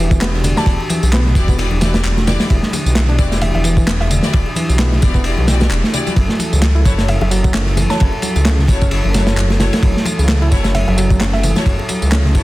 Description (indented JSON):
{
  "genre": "breakbeat, breaks",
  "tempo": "131 BPM",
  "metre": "4/4",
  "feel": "swing 57% on 16ths",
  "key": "E dorian",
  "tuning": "A4 = 442 Hz",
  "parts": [
    { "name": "mellow tonewheel organ", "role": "sustained chords", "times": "0.0-12.4 s", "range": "E3 to A4", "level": "-26 LUFS", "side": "right 2 dB", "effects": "slow rotary speaker, sidechain pumping" },
    { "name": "bright reed electric piano", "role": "riff", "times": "0.0-12.4 s", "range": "D3 to E4", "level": "-24 LUFS", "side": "equal", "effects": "tube saturation, vintage 12-bit sampler grit, dub echo" },
    { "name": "detuned saw bass", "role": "bass", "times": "0.0-12.4 s", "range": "E1 to C#2", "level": "-16 LUFS", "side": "equal", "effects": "none" },
    { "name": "crunchy breakbeat drum kit", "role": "drums", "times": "0.1-12.4 s", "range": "kick drum, ride cymbal, snare drum", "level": "-16 LUFS", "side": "equal", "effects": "none" },
    { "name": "electronic tambourine and handclaps", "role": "drums", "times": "0.1-12.4 s", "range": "none", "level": "-26 LUFS", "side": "equal", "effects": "none" },
    { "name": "congas and bongos", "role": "percussion", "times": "0.2-12.4 s", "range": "none", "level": "-26 LUFS", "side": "left 4 dB", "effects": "none" },
    { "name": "mallet-like synth pluck", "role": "melody", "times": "0.6-4.3, 7.1-11.7 s", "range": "E5 to A5", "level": "-26 LUFS", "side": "right 1 dB", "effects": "chorus, small speaker sound, dub echo" },
    { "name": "clear symphonic string section", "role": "stabs", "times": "0.6-12.4 s", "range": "E4 to D5", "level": "-26 LUFS", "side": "left 3 dB", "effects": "dub echo" }
  ],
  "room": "small room ambience",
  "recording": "dense, heavily limited modern master",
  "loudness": "-12 LUFS",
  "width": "side -18 dB against mid",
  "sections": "0.0-12.4 A section",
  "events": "none",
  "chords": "0.0 Em9; 6.2 F#m7",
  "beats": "0.21 | 0.67 1.13 1.59 2.04 | 2.50 2.96 3.42 3.88 | 4.33 4.79 5.25 5.71 | 6.17 6.62 7.08 7.54 | 8.00 8.46 8.91 9.37 | 9.83 10.29 10.75 11.21 | 11.66 12.12"
}